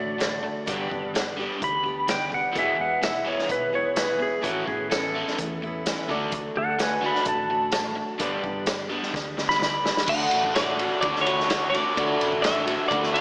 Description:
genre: folk rock and heartland rock.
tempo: 128 BPM.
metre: 4/4.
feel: straight.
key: unclear.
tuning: A4 = 441 Hz.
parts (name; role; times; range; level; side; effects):
clean lap steel guitar; second line; 0.0-10.1 s; F#4 to B5; -26 LUFS; equal; slapback echo.
picked old ladder-braced acoustic guitar; accompaniment; 0.0-13.2 s; E2 to G#4; -31 LUFS; equal; none.
crunchy overdriven guitar; riff; 0.0-13.2 s; E2 to F#4; -31 LUFS; equal; none.
hollow-body short-scale fingered electric bass; bass; 0.0-13.2 s; E1 to E2; -42 LUFS; equal; none.
vintage drum kit; drums; 0.2-13.2 s; crash cymbal, hi-hat, kick drum, ride cymbal, snare drum; -28 LUFS; equal; none.
reed electric piano; accompaniment; 2.5-13.2 s; D4 to F#5; -37 LUFS; equal; none.
tambourine; percussion; 3.0-9.7 s; none; -45 LUFS; equal; none.
twelve-string electric guitar; melody; 10.1-13.2 s; C#5 to F#5; -24 LUFS; equal; slapback echo.
room: wet lush hall reverb, RT60 2.3 s.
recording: big arena sound, small speaker sound.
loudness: -22 LUFS.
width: side -36 dB against mid.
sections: 0.0-10.1 A section; 10.1-13.2 B section.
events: electric slide guitar solo 0.0-10.1; drum fill 9.1-10.1.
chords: 0.0 D; 0.7 G; 2.6 E; 4.4 Aadd9; 6.1 D; 8.2 G; 10.1 D.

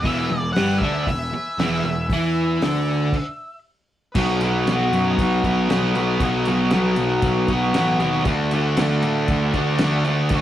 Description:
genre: garage rock duo or trio.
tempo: 117 BPM.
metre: 4/4.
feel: straight.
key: E mixolydian.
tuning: A4 = 441 Hz.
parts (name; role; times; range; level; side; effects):
octave-fuzz lead guitar; melody; 0.0-3.6 s; E5 to F#5; -27 LUFS; equal; distortion.
overdriven combo organ; sustained chords; 0.0-10.4 s; A4 to G#5; -33 LUFS; equal; none.
fuzz guitar; riff; 0.0-10.4 s; E2 to E4; -20 LUFS; equal; distortion.
fuzz picked electric bass; bass; 0.0-10.4 s; E1 to A2; -23 LUFS; equal; overdrive, tube saturation.
cloth-damped thuddy drum kit; drums; 0.0-10.4 s; crash cymbal, hi-hat, kick drum, snare drum; -26 LUFS; equal; none.
room: moderate studio ambience, RT60 0.5 s.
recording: rough rehearsal-room recording.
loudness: -18 LUFS.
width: side -12 dB against mid.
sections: 0.0-4.2 A section; 4.2-10.4 B section.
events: stop 3.1-4.2.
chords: 0.0 E; 4.2 B; 8.3 D.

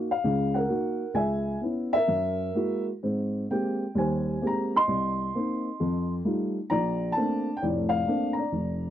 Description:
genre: solo jazz.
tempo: 131 BPM.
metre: 4/4.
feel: swing 67% on 8ths, rubato.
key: unclear.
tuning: A4 = 440 Hz.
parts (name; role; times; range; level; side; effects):
dark upright piano; solo; 0.0-8.9 s; F1 to C6; -25 LUFS; equal; none.
room: light reverb.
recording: dry, close 1970s-style studio recording.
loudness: -25 LUFS.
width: side -11 dB against mid.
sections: 0.0-8.9 A section.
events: none.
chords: 0.0 Gb6; 1.1 Dbm7; 2.1 Gb9; 3.0 Abmaj9; 4.9 Cm7; 5.8 F9; 6.7 Bbmaj9.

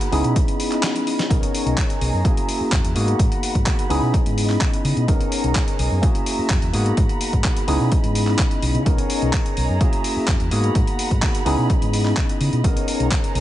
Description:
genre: filtered disco house.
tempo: 127 BPM.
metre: 4/4.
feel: straight.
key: B major.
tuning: A4 = 440 Hz.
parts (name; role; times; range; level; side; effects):
overdriven tine electric piano; accompaniment; 0.0-13.4 s; A#3 to A#4; -24 LUFS; left 1 dB; phaser, vintage 12-bit sampler grit, sidechain pumping, low-pass filter.
warm chamber violin section; sustained chords; 0.0-13.4 s; G#4 to B5; -29 LUFS; right 2 dB; sidechain pumping, low-pass filter.
dusty soul sampler-style drum kit; drums; 0.0-13.4 s; handclaps, hi-hat, snare drum; -27 LUFS; left 1 dB; sidechain pumping on hats, studio ambience.
fingered electric bass; bass; 0.1-13.4 s; B1 to C#3; -22 LUFS; equal; sidechain pumping, low-pass filter.
electronic kick drum; drums; 0.4-13.2 s; none; -20 LUFS; equal; studio ambience.
room: little or no reverb.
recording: nothing above 10.6 kHz.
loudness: -17 LUFS.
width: side -13 dB against mid.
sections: 0.0-13.4 A section.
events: filter sweep 0.0-13.4; drum fill 0.8-1.3.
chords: 0.1 C#m9; 1.3 Bmaj13; 2.2 F#9; 3.0 G#m9; 3.9 C#m9; 5.1 Bmaj13; 6.0 F#9; 6.7 G#m9; 7.7 C#m9; 8.9 Bmaj13; 9.8 F#9; 10.5 G#m9; 11.5 C#m9; 12.6 Bmaj13.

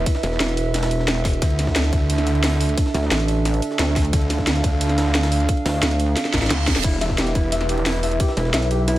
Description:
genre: dark technical drum and bass.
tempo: 177 BPM.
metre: 4/4.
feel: straight.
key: unclear.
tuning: A4 = 436 Hz.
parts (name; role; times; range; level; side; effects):
dark analog pad; sustained chords; 0.0-9.0 s; D4 to F5; -25 LUFS; right 3 dB; chorus, sidechain pumping.
snarling distorted saw bass; bass; 0.0-8.2 s; E1 to D2; -21 LUFS; equal; distortion, sidechain pumping.
breakbeat sampler-style drum kit; drums; 0.1-9.0 s; hi-hat, ride cymbal, snare drum; -31 LUFS; equal; high-pass filter on cymbals, high-pass filter on snare, high-pass filter on hats.
drum and bass drum kit; drums; 0.1-9.0 s; crash cymbal, hi-hat, snare drum; -24 LUFS; equal; none.
electronic kick drum; drums; 0.1-8.3 s; none; -22 LUFS; equal; none.
pulsing pluck wobble bass; bass; 0.2-9.0 s; E1 to D2; -21 LUFS; equal; chorus.
reverse cymbal; sound effects; 6.3-6.8 s; none; -28 LUFS; right 5 dB; none.
felt-muted upright piano; arpeggios; 6.8-9.0 s; E4 to E5; -26 LUFS; left 2 dB; sidechain pumping, analog delay.
room: light reverb.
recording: none.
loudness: -18 LUFS.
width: side -15 dB against mid.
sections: 0.0-9.0 A section.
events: drum fill 6.2-6.8; reverse cymbal 6.3-6.8.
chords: 0.0 E5; 1.4 Dm; 6.8 Em.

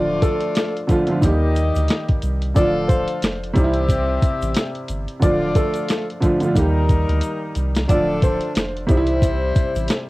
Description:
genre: hip hop, boom-bap hip-hop.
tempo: 90 BPM.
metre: 4/4.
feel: swing 59% on 16ths.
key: unclear.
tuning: A4 = 441 Hz.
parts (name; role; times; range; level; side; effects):
warm upright piano; melody; 0.0-8.7 s; A4 to D5; -24 LUFS; equal; cassette tape, plate reverb.
dark grand piano; accompaniment; 0.0-10.1 s; C3 to G4; -22 LUFS; right 1 dB; none.
warm horn section; stabs; 0.0-10.1 s; F3 to F5; -26 LUFS; left 3 dB; plate reverb, analog delay.
soft dub sub bass; bass; 0.0-9.9 s; D1 to Eb2; -22 LUFS; equal; transformer saturation.
dusty soul sampler-style drum kit; drums; 0.2-10.1 s; hi-hat, kick drum, rim click, snare drum; -19 LUFS; equal; cassette tape.
egg shaker; percussion; 0.2-10.1 s; none; -46 LUFS; left 4 dB; none.
room: light reverb.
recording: home recording on cassette.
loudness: -17 LUFS.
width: side -19 dB against mid.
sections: 0.0-10.1 A section.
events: drum fill 7.2-7.9.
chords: 0.0 Dm; 1.2 Eb; 2.6 Dm; 3.6 C; 5.2 Dm; 6.6 Eb; 7.9 Dm; 8.9 C.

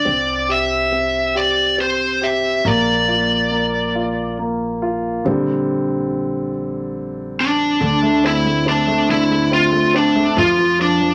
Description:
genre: six-eight pop ballad.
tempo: 47 BPM (dotted quarters).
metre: 6/8.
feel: straight.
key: unclear.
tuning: A4 = 439 Hz.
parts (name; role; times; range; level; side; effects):
lead guitar through a small cranked amp; melody; 0.0-11.1 s; D4 to E5; -19 LUFS; equal; overdrive.
warm grand piano; accompaniment; 0.0-11.1 s; D3 to G4; -22 LUFS; equal; none.
upright bass; bass; 0.0-11.1 s; Bb1 to F2; -30 LUFS; equal; none.
room: moderate club reverb, RT60 0.6 s.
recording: none.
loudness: -18 LUFS.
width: mono.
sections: 0.0-5.3 A section; 5.3-7.8 B section; 7.8-11.1 C section.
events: grand piano solo 5.3-7.8.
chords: 0.1 C; 2.7 Bb; 5.3 Bb6; 7.8 D5; 10.4 F5.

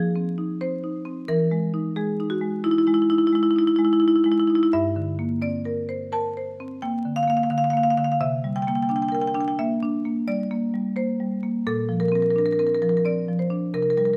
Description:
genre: classical, contemporary piece for solo marimba.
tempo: 87 BPM.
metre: 5/4.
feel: rubato.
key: unclear.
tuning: A4 = 441 Hz.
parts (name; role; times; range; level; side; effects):
marimba with medium hard mallets; solo; 0.0-14.2 s; G2 to A5; -23 LUFS; equal; none.
room: moderate stone room reverb, RT60 1.3 s.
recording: close, detailed microphones, vinyl crackle.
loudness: -23 LUFS.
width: mono.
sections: 0.0-14.2 A section.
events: none.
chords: 0.0 Fm7; 1.3 Emaj7; 4.7 Gm11; 8.2 C9; 11.7 Bbadd9.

